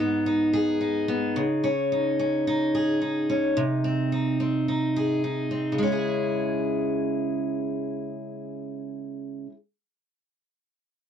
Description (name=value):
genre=pop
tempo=108 BPM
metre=4/4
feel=swing 55% on 16ths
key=C# minor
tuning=A4 = 439 Hz
part: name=picked steel-string acoustic guitar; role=accompaniment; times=0.0-9.6 s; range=G#2 to G#4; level=-24 LUFS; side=equal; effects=none
room=moderate booth ambience, RT60 0.2 s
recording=dry, close 1970s-style studio recording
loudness=-23 LUFS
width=side -8 dB against mid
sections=0.0-5.8 A section; 5.8-8.0 B section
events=none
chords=0.0 G#m; 1.4 C#sus2; 3.6 G#/B#; 5.8 C#m